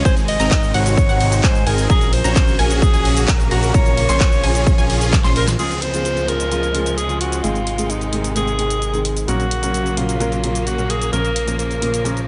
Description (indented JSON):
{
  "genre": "EDM, festival progressive house",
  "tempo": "130 BPM",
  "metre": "4/4",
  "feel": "straight",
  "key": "Db major",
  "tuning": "A4 = 440 Hz",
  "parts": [
    { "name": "warm alto saxophone", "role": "melody", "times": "0.0-12.2 s", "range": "Eb4 to Eb5", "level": "-25 LUFS", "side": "equal", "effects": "dub echo" },
    { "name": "clear symphonic string section", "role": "sustained chords", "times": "0.0-12.3 s", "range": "C3 to Bb3", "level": "-30 LUFS", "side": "equal", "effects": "sidechain pumping" },
    { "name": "fat analog bass", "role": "bass", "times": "0.0-12.3 s", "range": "Ab1 to Ab2", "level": "-24 LUFS", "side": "equal", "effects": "sidechain pumping" },
    { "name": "unison pluck", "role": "arpeggios", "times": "0.1-5.4 s", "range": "Gb5 to C6", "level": "-29 LUFS", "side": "equal", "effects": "cassette tape, sidechain pumping, dub echo" },
    { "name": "supersaw chords", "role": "riff", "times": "0.1-5.4 s", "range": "C4 to Db5", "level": "-27 LUFS", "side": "equal", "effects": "phaser, sidechain pumping, low-pass filter" },
    { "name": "electronic kick drum", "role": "drums", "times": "0.1-5.2 s", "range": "none", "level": "-18 LUFS", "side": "equal", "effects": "overdrive, studio reverb" },
    { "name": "pop drum kit", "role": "drums", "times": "0.1-12.3 s", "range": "crash cymbal, handclaps, hi-hat, shaker, snare drum", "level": "-28 LUFS", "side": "equal", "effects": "studio reverb" },
    { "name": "warm grand piano", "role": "accompaniment", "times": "5.6-12.2 s", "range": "Ab2 to Bb4", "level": "-26 LUFS", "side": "equal", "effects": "sidechain pumping" },
    { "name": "downlifter", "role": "sound effects", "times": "5.6-9.3 s", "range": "none", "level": "-34 LUFS", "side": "equal", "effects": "none" }
  ],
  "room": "light reverb",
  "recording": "nothing above 10.3 kHz",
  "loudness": "-17 LUFS",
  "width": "mono",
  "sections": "0.0-5.6 A section; 5.6-12.3 B section",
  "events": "drop 0.0-5.6; drum fill 5.1-5.6; band accent 5.5",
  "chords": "0.1 Ab; 1.9 Gb/Bb; 3.7 Bbm; 5.6 Db; 7.4 Ab; 9.3 Gb/Bb; 11.1 Bbm"
}